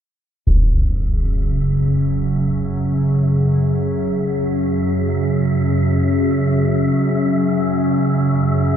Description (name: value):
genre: dark ambient drone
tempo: free time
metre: none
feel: none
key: unclear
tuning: A4 = 439 Hz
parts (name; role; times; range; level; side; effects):
- organ-like drone; drone; 0.9-8.8 s; F#2 to C#3; -16 LUFS; equal; ensemble chorus, built-in reverb
- concert bass drum; percussion; 0.5-0.7 s; none; -19 LUFS; equal; low-pass filter on kick
- wind-like tuned noise texture; texture; 1.6-8.8 s; E5; -30 LUFS; equal; built-in reverb
room: wet cathedral reverb, RT60 5.5 s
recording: in a vast, echoing space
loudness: -16 LUFS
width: side -9 dB against mid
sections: 0.5-8.8 A section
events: fade-in on synth texture 0.5-8.8; filter sweep on synth drone 0.5-8.8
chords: 0.5 F#5